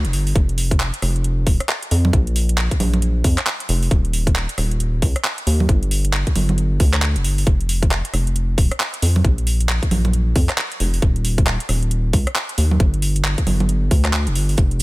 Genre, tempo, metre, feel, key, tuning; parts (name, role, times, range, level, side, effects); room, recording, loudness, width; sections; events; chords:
UK garage, two-step garage; 135 BPM; 4/4; swing 61% on 16ths; A4 = 438 Hz
rubbery square bass; bass; 0.0-14.8 s; Eb1 to F2; -18 LUFS; equal; sidechain pumping
garage drum kit; drums; 0.0-14.8 s; congas, handclaps, hi-hat, rim click, shaker; -23 LUFS; right 2 dB
electronic kick drum; drums; 0.4-14.7 s; -17 LUFS; equal
little or no reverb; -16 LUFS; side -20 dB against mid
0.0-14.8 A section